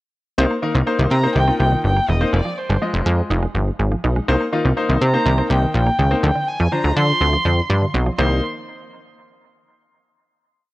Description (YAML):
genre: pop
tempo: 123 BPM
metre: 4/4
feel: straight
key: C minor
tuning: A4 = 440 Hz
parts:
  - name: clear concert grand piano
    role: accompaniment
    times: 0.4-8.4 s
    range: F3 to Eb5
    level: -22 LUFS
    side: left 3 dB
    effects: none
  - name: mallet-like synth pluck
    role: arpeggios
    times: 0.4-8.4 s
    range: D3 to Eb4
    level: -27 LUFS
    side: right 3 dB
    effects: chorus, dub echo
  - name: plucky analog bass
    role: bass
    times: 0.4-8.4 s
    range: E1 to D3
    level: -17 LUFS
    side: equal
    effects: none
  - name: dark violin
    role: melody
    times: 1.1-8.4 s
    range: C5 to C6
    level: -22 LUFS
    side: equal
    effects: dub echo
room: light reverb, small room ambience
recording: worn, warbling old tape, cassette tape, warbly pitch drift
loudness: -16 LUFS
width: side -18 dB against mid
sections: 0.4-8.2 verse; 8.2-10.1 final chord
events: none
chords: 0.4 Cm7; 2.3 Fm7; 4.3 Cm7; 6.2 Bb69 (rootless); 8.2 Cm7